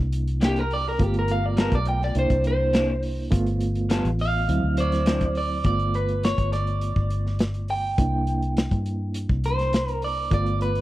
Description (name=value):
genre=straight-eighth soul blues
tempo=103 BPM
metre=4/4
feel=straight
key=G mixolydian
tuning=A4 = 441 Hz
part: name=reed electric piano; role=accompaniment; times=0.0-10.8 s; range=F#3 to F4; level=-30 LUFS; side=right 3 dB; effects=overdrive, fast tremolo
part: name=vintage muted fingered electric bass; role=bass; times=0.0-10.8 s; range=G1 to G2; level=-25 LUFS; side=equal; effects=none
part: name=crunchy breakbeat drum kit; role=drums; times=0.1-10.8 s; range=hi-hat, kick drum, snare drum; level=-24 LUFS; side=equal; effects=none
part: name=electric guitar through a small old amp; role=melody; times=0.4-10.8 s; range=G4 to G5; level=-26 LUFS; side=right 1 dB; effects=spring reverb
part: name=electric guitar through a small old amp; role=stabs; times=0.4-5.2 s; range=C3 to A4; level=-27 LUFS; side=left 1 dB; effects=none
room=little or no reverb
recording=dry, close 1970s-style studio recording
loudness=-21 LUFS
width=side -16 dB against mid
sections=0.0-5.6 A section; 5.6-10.8 B section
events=clean electric guitar solo 0.0-5.6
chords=0.0 C9; 1.0 G9; 2.2 C9; 3.3 G9; 4.5 D9; 5.6 G9; 8.0 C9